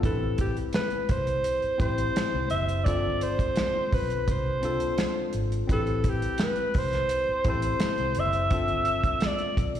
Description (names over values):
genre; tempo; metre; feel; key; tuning
lush 1970s-style soul; 85 BPM; 4/4; straight; A minor; A4 = 440 Hz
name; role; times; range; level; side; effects
tine electric piano; accompaniment; 0.0-9.8 s; C4 to C5; -32 LUFS; left 7 dB; slapback echo
vintage muted fingered electric bass; bass; 0.0-9.8 s; F#1 to C2; -30 LUFS; right 1 dB; none
warm soul drum kit; drums; 0.0-9.8 s; hi-hat, kick drum, snare drum; -28 LUFS; right 1 dB; slapback echo
clear alto saxophone; melody; 0.1-9.7 s; G4 to E5; -28 LUFS; right 1 dB; slapback echo
room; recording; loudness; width
little or no reverb; live gig heard through the venue's PA, recital hall reverb; -24 LUFS; side -10 dB against mid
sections
0.0-9.8 A section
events
none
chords
0.0 Am9; 2.9 G7sus4; 5.7 Am9; 8.5 G7sus4